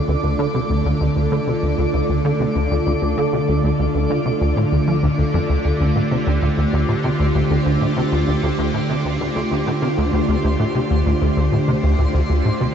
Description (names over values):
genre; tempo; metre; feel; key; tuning
ambient, sequencer-driven space music; 97 BPM; 4/4; straight; D minor; A4 = 438 Hz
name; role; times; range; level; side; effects
evolving wavetable pad; sustained chords; 0.0-12.7 s; D3 to A4; -20 LUFS; equal; ensemble chorus, built-in reverb
twinkling granular texture; texture; 0.0-12.7 s; D4 to D5; -26 LUFS; right 1 dB; built-in reverb, lush chorus
plucky analog bass; riff; 0.1-12.7 s; D2 to F3; -19 LUFS; equal; ensemble chorus, analog delay
room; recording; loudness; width
wet huge ambient reverb, RT60 7.7 s; dreamy mix soaked in reverb, nothing above 7.9 kHz; -16 LUFS; side -8 dB against mid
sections
0.0-12.7 A section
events
none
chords
0.0 Dm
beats
| 0.54 1.16 1.78 2.40 | 3.02 3.64 4.26 4.87 | 5.49 6.11 6.73 7.35 | 7.97 8.59 9.20 9.82 | 10.44 11.06 11.68 12.30